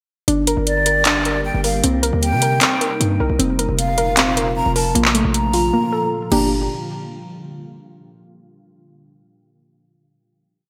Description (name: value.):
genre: hip hop, trap.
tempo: 154 BPM.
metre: 4/4.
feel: half-time.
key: G minor.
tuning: A4 = 440 Hz.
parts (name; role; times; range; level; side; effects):
glassy FM pad; sustained chords; 0.8-6.5 s; Bb2 to G4; -30 LUFS; equal; ensemble chorus, built-in reverb.
soft round pluck; arpeggios; 0.3-6.5 s; A3 to Bb4; -23 LUFS; equal; chorus, delay.
distorted 808-style bass; bass; 0.3-6.7 s; F1 to C3; -24 LUFS; equal; distortion.
trap drum kit; drums; 0.3-6.4 s; crash cymbal, handclaps, hi-hat; -22 LUFS; equal; gated reverb.
breathy hollow jazz flute; second line; 0.7-6.5 s; D5 to Bb5; -24 LUFS; equal; delay.
room: moderate plate reverb, RT60 2.2 s.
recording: bright 1980s-style digital production.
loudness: -18 LUFS.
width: mono.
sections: 0.3-6.5 hook; 6.5-8.1 final hit.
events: drums muted 5.7-6.5.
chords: 0.3 Gm; 1.8 Cm7; 3.4 Fsus4; 5.0 Bbmaj7; 6.3 Gm; 6.5 N.C..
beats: | 0.28 0.67 1.06 1.45 | 1.84 2.23 2.62 3.00 | 3.39 3.78 4.17 4.56 | 4.95 5.34 5.73 6.12 | 6.51.